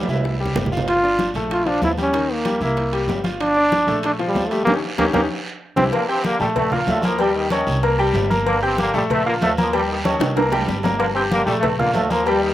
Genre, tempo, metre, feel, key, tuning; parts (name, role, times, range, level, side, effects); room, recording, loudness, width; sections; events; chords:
latin, salsa; 190 BPM; 4/4; straight; A4 = 441 Hz
clear concert grand piano; accompaniment; 0.0-12.5 s; Eb3 to G6; -22 LUFS; left 2 dB; slapback echo
upright bass; bass; 0.0-12.5 s; G1 to Eb2; -26 LUFS; right 1 dB
congas; percussion; 0.0-12.5 s; -26 LUFS; equal
timbales and agogo bells; percussion; 0.0-12.4 s; -28 LUFS; right 6 dB; slapback echo
bongos and cowbell; percussion; 0.1-12.4 s; -28 LUFS; left 8 dB; slapback echo
guiro; percussion; 0.1-12.5 s; -33 LUFS; right 3 dB; slapback echo
bright trombone; melody; 0.9-5.8 s; G3 to F4; -19 LUFS; right 1 dB
bright trombone section; melody; 5.9-12.5 s; G2 to C4; -22 LUFS; equal; slapback echo
little or no reverb; recorded outdoors, with no room sound; -17 LUFS; side -13 dB against mid
0.0-5.9 A section; 5.9-12.5 B section
drum fill 0.0-0.9, 4.7-5.9, 10.2-11.0; band accent 4.7-5.9
0.2 C; 0.9 Gm7; 1.5 Bb5; 2.1 Eb; 2.8 C7; 3.4 Gm7; 4.0 Bb5; 4.7 Eb7; 5.3 C; 5.9 Gm; 6.6 Bbmaj7; 7.2 Eb7; 7.8 C5; 8.5 Gm; 9.1 Bbmaj7; 9.7 Eb7; 10.4 C5; 11.0 Gm; 11.6 Bbmaj7